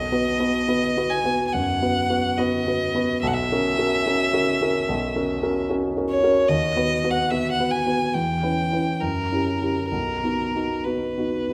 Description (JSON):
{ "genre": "classical, romantic duo for violin and grand piano", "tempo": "63-75 BPM", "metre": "4/4", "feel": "rubato", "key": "B major", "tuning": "A4 = 440 Hz", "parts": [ { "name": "clear violin", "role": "melody", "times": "0.0-11.5 s", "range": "A#4 to G#5", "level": "-26 LUFS", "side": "equal", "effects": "none" }, { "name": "dark grand piano", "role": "accompaniment", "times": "0.0-11.5 s", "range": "B1 to B4", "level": "-25 LUFS", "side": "equal", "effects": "none" } ], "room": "wet recital hall reverb, RT60 1.5 s", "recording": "none", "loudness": "-23 LUFS", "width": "mono", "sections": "0.0-11.5 A section", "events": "none", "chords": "0.0 B; 3.2 F#7/B; 6.5 B/D#; 8.1 C#m7b5/E; 9.0 F#7b9; 9.9 B" }